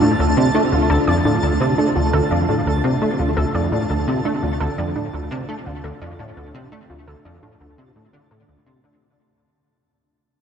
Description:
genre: ambient, sequencer-driven space music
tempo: 85 BPM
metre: 4/4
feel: straight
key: D minor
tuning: A4 = 440 Hz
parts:
  - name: phased string machine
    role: sustained chords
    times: 0.0-9.0 s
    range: D3 to F4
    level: -24 LUFS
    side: equal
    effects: ensemble chorus, phaser
  - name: warbly dusty pluck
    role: arpeggios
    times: 0.0-8.8 s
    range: D4 to D5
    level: -24 LUFS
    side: moving between left 2 dB and right 5 dB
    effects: chorus, auto-pan, tape echo
  - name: plucky analog bass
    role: riff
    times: 0.0-9.0 s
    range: D2 to A3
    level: -20 LUFS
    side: equal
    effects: ensemble chorus, tape echo
  - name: twinkling granular texture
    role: texture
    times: 0.0-9.0 s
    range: A5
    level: -28 LUFS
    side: right 2 dB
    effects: built-in reverb
room: wet cathedral reverb, RT60 5.6 s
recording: dreamy mix soaked in reverb, nothing above 10.3 kHz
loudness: -16 LUFS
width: side -7 dB against mid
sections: 0.0-9.0 A section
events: fade-out 0.0-9.0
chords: 0.0 Dm

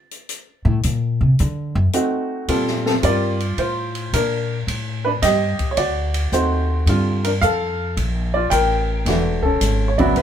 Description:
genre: jazz piano trio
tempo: 109 BPM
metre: 4/4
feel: swing 67% on 8ths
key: Bb major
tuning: A4 = 440 Hz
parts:
  - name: open jazz drum kit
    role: drums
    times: 0.1-10.2 s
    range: hi-hat, kick drum, ride cymbal, snare drum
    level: -27 LUFS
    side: left 1 dB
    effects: none
  - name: upright bass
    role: bass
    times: 0.6-10.2 s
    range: E1 to D3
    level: -20 LUFS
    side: equal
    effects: none
  - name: warm baby grand piano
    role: melody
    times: 1.9-10.2 s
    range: Db3 to G5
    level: -20 LUFS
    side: right 1 dB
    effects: none
room: moderate studio reverb, RT60 0.5 s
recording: band playing live in one room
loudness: -17 LUFS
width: side -9 dB against mid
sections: 0.0-2.5 A section; 2.5-10.2 B section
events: upright bass solo 0.0-2.5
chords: 0.3 Am; 1.4 F#dim7; 2.5 Bbmaj13; 4.7 Gsus2; 5.8 D7b9; 6.9 Gm9; 9.1 E9sus4

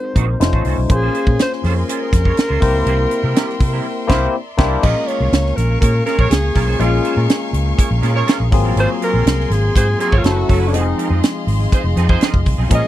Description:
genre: polished 1980s jazz-funk pop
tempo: 122 BPM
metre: 4/4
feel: straight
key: Bb minor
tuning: A4 = 436 Hz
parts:
  - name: breathy alto saxophone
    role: melody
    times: 0.0-12.9 s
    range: D4 to Eb5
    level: -21 LUFS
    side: equal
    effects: slapback echo
  - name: barky tine electric piano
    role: accompaniment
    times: 0.0-12.9 s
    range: F3 to C5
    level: -22 LUFS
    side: left 5 dB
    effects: analog chorus
  - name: clean electric guitar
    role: riff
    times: 0.0-12.9 s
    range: F3 to Db5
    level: -26 LUFS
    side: right 9 dB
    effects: ensemble chorus
  - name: vintage muted fingered electric bass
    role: bass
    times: 0.2-12.8 s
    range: F1 to C3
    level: -17 LUFS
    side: equal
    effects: none
  - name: tight funk drum kit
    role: drums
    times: 0.2-12.8 s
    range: crash cymbal, hi-hat, kick drum, snare drum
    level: -16 LUFS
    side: right 1 dB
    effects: none
  - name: warm studio string section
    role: sustained chords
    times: 0.9-12.9 s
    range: Db4 to Db6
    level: -28 LUFS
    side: left 1 dB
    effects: none
  - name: warm horn section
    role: second line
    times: 5.8-12.2 s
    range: C4 to Db5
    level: -23 LUFS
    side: right 5 dB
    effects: none
room: little or no reverb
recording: dry, close 1970s-style studio recording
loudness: -14 LUFS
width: side -13 dB against mid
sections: 0.0-4.8 A section; 4.8-12.9 B section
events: band accent 3.8-4.8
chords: 0.4 F7b13; 0.9 Bbm9; 2.6 C7; 4.3 C9; 4.8 Bbm7; 8.5 Ab13; 10.2 Gbm7; 10.7 Fm7

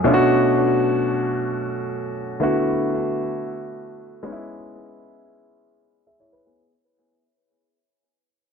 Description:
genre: disco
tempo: free time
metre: none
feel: none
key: unclear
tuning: A4 = 440 Hz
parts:
  - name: warm concert grand piano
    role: solo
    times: 0.0-6.7 s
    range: B2 to E5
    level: -19 LUFS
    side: equal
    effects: low-pass filter, analog delay
room: light reverb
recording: dark, warm production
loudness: -19 LUFS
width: side -6 dB against mid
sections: 0.0-6.6 A section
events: fade-out 0.0-6.6; filter sweep on grand piano 0.0-6.6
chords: 0.1 Bm7; 2.4 D69; 4.2 C#m7

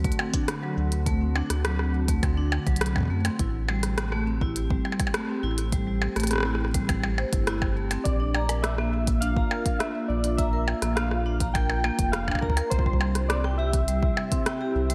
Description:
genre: IDM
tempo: 103 BPM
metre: 4/4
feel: straight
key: A minor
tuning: A4 = 440 Hz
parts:
  - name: glassy FM pad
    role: sustained chords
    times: 0.0-14.9 s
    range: C3 to G4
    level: -36 LUFS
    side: equal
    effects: ensemble chorus, built-in reverb
  - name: vibraphone with medium hard mallets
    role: arpeggios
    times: 0.0-14.9 s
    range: F#3 to Bb5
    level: -34 LUFS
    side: equal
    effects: delay, slapback echo
  - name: round analog bass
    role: bass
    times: 0.0-14.9 s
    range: F1 to F#2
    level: -29 LUFS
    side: equal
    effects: none
  - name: electronic kick drum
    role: drums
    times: 0.0-14.4 s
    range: none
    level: -30 LUFS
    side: equal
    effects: none
  - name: glitchy drum kit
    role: drums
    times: 0.0-14.9 s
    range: hi-hat, percussion blips, rim click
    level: -33 LUFS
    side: equal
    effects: delay, slapback echo
  - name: warbly lo-fi synth keys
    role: melody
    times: 8.0-14.9 s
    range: Bb4 to G5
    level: -34 LUFS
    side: equal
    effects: chorus, delay, slapback echo
room: light reverb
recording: none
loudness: -26 LUFS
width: mono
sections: 0.0-14.9 A section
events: none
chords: 0.0 D7; 3.4 Am7; 8.1 Bb; 12.7 C

